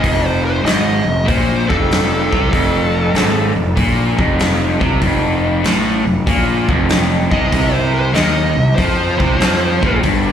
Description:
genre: blues rock power trio and southern rock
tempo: 96 BPM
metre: 4/4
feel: swing 67% on 8ths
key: unclear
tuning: A4 = 440 Hz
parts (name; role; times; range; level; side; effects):
- smooth overdriven lead guitar; melody; 0.0-3.5, 7.3-10.0 s; A4 to Eb5; -20 LUFS; right 1 dB; slapback echo, analog delay
- distorted electric guitar; riff; 0.0-10.3 s; F2 to F3; -17 LUFS; equal; distortion, slapback echo
- fuzz fingered electric bass; bass; 0.0-10.3 s; F1 to F2; -18 LUFS; equal; overdrive
- huge arena drum kit; drums; 0.0-10.2 s; hi-hat, kick drum, snare drum; -19 LUFS; equal; none
room: light reverb, small room reverb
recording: live gig heard through the venue's PA, club reverb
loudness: -12 LUFS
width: side -9 dB against mid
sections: 0.0-10.3 A section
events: lead electric guitar solo 0.0-10.3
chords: 0.0 F; 5.0 F#dim (rootless); 7.5 Bbsus24

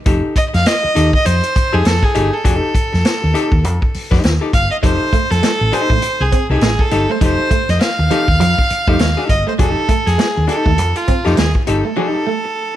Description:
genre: funk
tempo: 101 BPM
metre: 4/4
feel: swing 60% on 16ths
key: F mixolydian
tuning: A4 = 440 Hz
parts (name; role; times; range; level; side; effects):
- archtop guitar, miked and amplified; accompaniment; 0.1-12.5 s; Eb4 to C5; -21 LUFS; left 3 dB; none
- hollow-body short-scale fingered electric bass; bass; 0.1-11.8 s; F1 to F2; -17 LUFS; equal; none
- vintage drum kit; drums; 0.1-11.8 s; hi-hat, kick drum, snare drum; -17 LUFS; equal; none
- rich fiddle; melody; 0.4-12.8 s; F4 to F5; -18 LUFS; right 1 dB; slapback echo
- electric guitar at the edge of break-up; riff; 4.8-12.4 s; F3 to C4; -24 LUFS; right 6 dB; tremolo
room: light reverb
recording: vinyl crackle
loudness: -12 LUFS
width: side -12 dB against mid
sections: 0.0-12.8 A section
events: break 12.0-12.8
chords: 0.0 F9

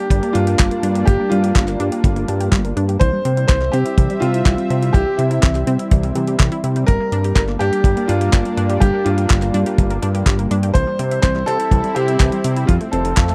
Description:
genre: italo disco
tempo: 124 BPM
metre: 4/4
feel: straight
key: G dorian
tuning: A4 = 439 Hz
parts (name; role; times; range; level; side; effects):
- clear baby grand piano; melody; 0.0-13.3 s; E4 to C5; -24 LUFS; equal; tape echo
- lush unison pad; sustained chords; 0.0-13.3 s; Eb3 to E5; -27 LUFS; equal; chorus
- analog pluck; arpeggios; 0.0-13.3 s; E3 to G4; -28 LUFS; equal; chorus, cassette tape, tape echo
- fat analog bass; bass; 0.1-13.3 s; F1 to C3; -22 LUFS; equal; none
- clean 12-bit digital drum machine; drums; 0.1-13.3 s; handclaps, hi-hat; -28 LUFS; equal; small room ambience
- kick drum; drums; 0.1-13.3 s; none; -17 LUFS; equal; small room ambience
room: little or no reverb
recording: dry, close 1970s-style studio recording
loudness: -17 LUFS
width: mono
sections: 0.0-13.3 A section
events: none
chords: 0.0 Gm; 3.0 C; 6.9 Gm; 10.8 C; 12.7 F7

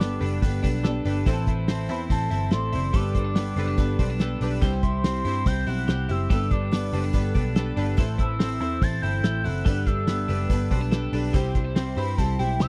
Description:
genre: jangly indie pop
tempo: 143 BPM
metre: 4/4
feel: straight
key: unclear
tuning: A4 = 440 Hz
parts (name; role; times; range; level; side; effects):
- soft octave-layered synth lead; melody; 0.0-12.7 s; G5 to A6; -34 LUFS; equal; chorus, tremolo
- picked twelve-string acoustic guitar; accompaniment; 0.0-12.7 s; C3 to A4; -39 LUFS; equal; lush chorus
- warm analog keys; accompaniment; 0.0-12.7 s; C4 to A5; -35 LUFS; equal; chorus
- twelve-string electric guitar; arpeggios; 0.0-12.7 s; E3 to A4; -34 LUFS; equal; none
- vintage muted picked electric bass; bass; 0.0-12.7 s; F#1 to G2; -29 LUFS; equal; none
- cloth-damped thuddy drum kit; drums; 0.0-12.7 s; hi-hat, kick drum, snare drum; -26 LUFS; equal; none
room: little or no reverb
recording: dry, close 1970s-style studio recording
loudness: -24 LUFS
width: mono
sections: 0.0-12.7 A section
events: synth keys fill 7.4-8.0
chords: 0.0 Gadd9; 1.3 Am; 2.9 Gadd9; 4.6 C; 6.3 Gadd9; 8.0 Am; 9.7 Gadd9; 11.3 C

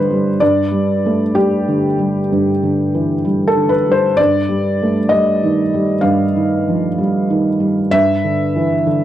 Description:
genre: neoclassical minimalist piano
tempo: 64 BPM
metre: 4/4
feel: rubato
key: unclear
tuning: A4 = 440 Hz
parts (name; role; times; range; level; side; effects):
- felt-muted upright piano; solo; 0.0-9.0 s; G2 to F5; -13 LUFS; equal; none
room: small room reverb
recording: dry, close 1970s-style studio recording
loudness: -13 LUFS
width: side -12 dB against mid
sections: 0.0-9.0 A section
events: none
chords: 0.0 Gsus2; 4.2 Ebsus2/G; 7.9 Em7/G

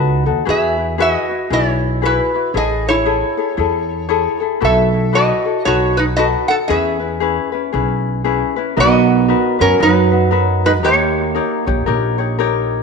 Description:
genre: Hawaiian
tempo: 116 BPM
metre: 4/4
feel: swing 61% on 8ths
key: E major, B major from 8.8 s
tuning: A4 = 440 Hz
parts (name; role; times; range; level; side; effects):
- metal-body resonator slide guitar; melody; 0.0-11.6 s; C#4 to F#5; -17 LUFS; right 1 dB; none
- ukulele; accompaniment; 0.0-12.8 s; C#4 to C#5; -18 LUFS; left 9 dB; none
- upright bass; bass; 0.0-12.8 s; A1 to F#2; -20 LUFS; right 2 dB; none
- fingerpicked swing-style acoustic guitar; second line; 8.8-11.6 s; F#3 to B3; -18 LUFS; right 11 dB; tape echo
room: moderate echo chamber reverb, RT60 1.7 s, studio reverb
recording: 1960s-style stereo with parts hard left and right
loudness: -13 LUFS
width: side -4 dB against mid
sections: 0.0-8.8 A section; 8.8-12.8 B section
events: none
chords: 0.5 Eadd9; 2.5 Amaj7; 4.6 B7sus4; 5.7 B7; 6.7 E6; 8.8 Bmaj7; 10.8 D#7

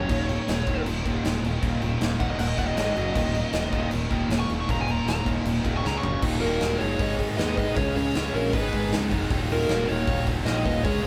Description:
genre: hard rock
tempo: 156 BPM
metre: 4/4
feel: straight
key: Eb minor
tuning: A4 = 440 Hz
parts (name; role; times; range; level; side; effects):
- dark smooth lead guitar; melody; 0.0-11.1 s; Bb4 to Db6; -32 LUFS; equal; overdrive
- heavy high-gain guitar; riff; 0.0-11.1 s; Eb2 to Db4; -35 LUFS; equal; distortion
- high-gain distorted guitar; riff; 0.0-11.1 s; Eb2 to Ab4; -36 LUFS; equal; distortion
- overdriven semi-hollow guitar; riff; 0.0-11.1 s; Eb2 to Db4; -33 LUFS; equal; spring reverb
- fingered electric bass; bass; 0.0-11.1 s; Eb1 to Ab2; -32 LUFS; equal; none
- big rock drum kit; drums; 0.1-11.1 s; crash cymbal, hi-hat, kick drum, snare drum, toms; -31 LUFS; equal; none
- bluesy overdriven lead guitar; second line; 6.4-11.1 s; Gb4 to Cb5; -38 LUFS; equal; distortion
room: moderate stone room reverb, RT60 1.4 s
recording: band playing live in one room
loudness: -25 LUFS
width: mono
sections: 0.0-6.2 A section; 6.2-11.1 B section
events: lead electric guitar solo 0.0-6.2; drum fill 5.8-6.2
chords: 0.1 Eb5; 2.8 Ab5; 3.0 Gb5; 3.2 Eb5; 5.8 Db5; 6.0 Gb5; 6.2 Ebm; 7.0 Abm; 7.8 Db; 8.5 Abm; 9.3 Ebm

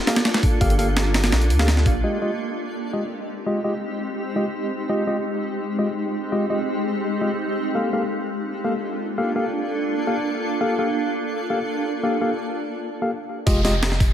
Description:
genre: drum and bass, jungle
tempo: 168 BPM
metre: 4/4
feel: straight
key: F dorian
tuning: A4 = 440 Hz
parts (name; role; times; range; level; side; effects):
- granular cloud pad; sustained chords; 0.0-14.1 s; Ab3 to A4; -25 LUFS; equal; built-in reverb
- mellow tine electric piano; stabs; 0.1-13.7 s; Ab3 to F5; -26 LUFS; left 1 dB; low-pass filter, dub echo
- breakbeat sampler-style drum kit; drums; 0.1-1.9, 13.5-14.1 s; hi-hat, kick drum, snare drum; -20 LUFS; equal; none
- soft dub sub bass; bass; 0.6-2.0, 13.5-14.1 s; F1 to D2; -20 LUFS; equal; tube saturation
- downlifter; sound effects; 13.5-14.1 s; none; -29 LUFS; equal; none
room: moderate echo chamber reverb, RT60 1.9 s, digital ambience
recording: none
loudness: -20 LUFS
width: side -10 dB against mid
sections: 0.0-2.0 A section; 2.0-13.5 B section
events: filter sweep on tine electric piano 2.0-13.5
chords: 0.0 Gm9; 2.0 Fm9; 7.8 Gm9; 13.5 Fm9

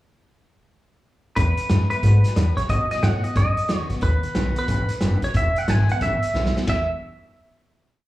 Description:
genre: rockabilly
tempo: 181 BPM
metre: 4/4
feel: swing 64% on 8ths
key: E major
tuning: A4 = 440 Hz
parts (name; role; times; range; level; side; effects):
- clean electric guitar; melody; 1.4-6.9 s; B4 to G#5; -25 LUFS; right 1 dB; slapback echo, tape echo
- picked steel-string acoustic guitar; accompaniment; 1.4-6.9 s; E2 to F#4; -31 LUFS; left 3 dB; slapback echo
- upright bass; bass; 1.4-6.9 s; E1 to B2; -20 LUFS; equal; none
- vintage drum kit; drums; 1.4-6.8 s; hi-hat, kick drum, ride cymbal, snare drum; -26 LUFS; equal; none
room: little or no reverb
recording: live gig heard through the venue's PA, club reverb, small room ambience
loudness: -18 LUFS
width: side -16 dB against mid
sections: 1.4-6.7 A section; 6.7-8.0 final chord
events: drum fill 6.3-6.7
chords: 1.4 E; 2.7 B7; 5.4 E

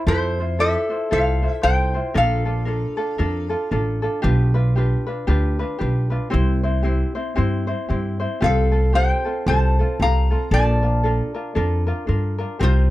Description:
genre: Hawaiian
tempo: 115 BPM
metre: 4/4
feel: swing 59% on 8ths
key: F major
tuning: A4 = 438 Hz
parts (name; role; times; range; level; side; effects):
- ukulele; accompaniment; 0.0-12.9 s; C4 to C5; -25 LUFS; equal; none
- metal-body resonator slide guitar; melody; 0.1-3.7, 8.4-12.9 s; E4 to Bb5; -22 LUFS; left 1 dB; none
- upright bass; bass; 0.1-12.9 s; A1 to G2; -19 LUFS; equal; none
room: light reverb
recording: dark, warm production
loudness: -18 LUFS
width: side -16 dB against mid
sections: 0.1-12.9 A section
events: none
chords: 0.1 Fmaj7; 2.2 Bbmaj7; 4.2 G7/B; 6.3 C; 8.4 Fadd9/C; 10.5 Bbmaj7

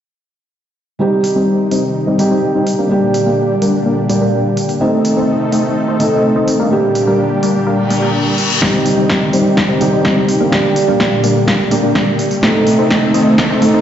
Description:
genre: EDM, festival progressive house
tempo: 126 BPM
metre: 4/4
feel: straight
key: unclear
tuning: A4 = 440 Hz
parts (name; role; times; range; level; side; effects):
- felt-muted upright piano; accompaniment; 1.0-13.8 s; G3 to A4; -16 LUFS; right 2 dB; sidechain pumping, ping-pong delay
- lush unison pad; sustained chords; 1.0-13.8 s; Bb2 to A4; -19 LUFS; left 1 dB; chorus, sidechain pumping
- supersaw stab; riff; 1.0-13.8 s; G3 to G5; -16 LUFS; left 1 dB; sidechain pumping, low-pass filter, ping-pong delay
- big-room dance drum kit; drums; 1.2-13.7 s; hi-hat, snare drum; -19 LUFS; left 1 dB; overdrive
- reverse cymbal and riser; sound effects; 7.8-13.8 s; none; -23 LUFS; left 3 dB; none
- electronic kick drum; drums; 8.6-13.5 s; none; -22 LUFS; left 1 dB; overdrive, high-pass filter on kick, high-pass filter on room
room: moderate lush hall reverb, RT60 2.2 s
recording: played on a big sound system in a bare room, stone room reverb, nothing above 7.7 kHz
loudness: -11 LUFS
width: side -9 dB against mid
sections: 1.0-8.6 A section; 8.6-13.8 B section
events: reverse cymbal 7.8-8.6; build-up 8.6-13.8; drum fill 8.6-13.8; filter sweep on supersaw synth 8.6-13.8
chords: 1.0 Cm; 2.9 Gm; 4.8 Adim; 6.7 Gm; 8.6 Cm; 10.5 Gm; 12.4 Adim

